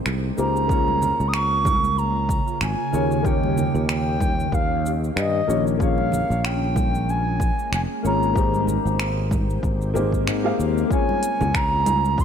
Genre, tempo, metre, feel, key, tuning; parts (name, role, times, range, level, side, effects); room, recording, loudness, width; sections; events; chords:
sunset chillout; 94 BPM; 4/4; swing 55% on 16ths; A4 = 440 Hz
dark grand piano; accompaniment; 0.0-12.2 s; Bb3 to F5; -27 LUFS; moving between left 6 dB and equal; auto-pan, vintage 12-bit sampler grit, ping-pong delay
ethereal airy pad; sustained chords; 0.0-12.2 s; Db3 to G5; -29 LUFS; right 2 dB; ensemble chorus, built-in reverb, phaser, vintage 12-bit sampler grit
sustaining fretless electric bass; bass; 0.1-12.2 s; F1 to Ab2; -24 LUFS; equal
deep house drum kit; drums; 0.1-12.2 s; cabasa, finger snaps, hi-hat; -30 LUFS; equal
bright reedy baroque flute; melody; 0.4-12.2 s; Eb5 to Eb6; -24 LUFS; right 1 dB; ping-pong delay
electronic kick drum; drums; 0.7-12.2 s; -24 LUFS; equal
congas; percussion; 0.9-12.0 s; -31 LUFS; right 3 dB
light reverb, digital ambience; -19 LUFS; side -8 dB against mid
0.0-10.9 A section; 10.9-12.2 B section
0.0 Abmaj9; 0.7 Db6; 3.3 Eb7; 5.8 Bbm7; 8.4 Abmaj9; 10.9 Db6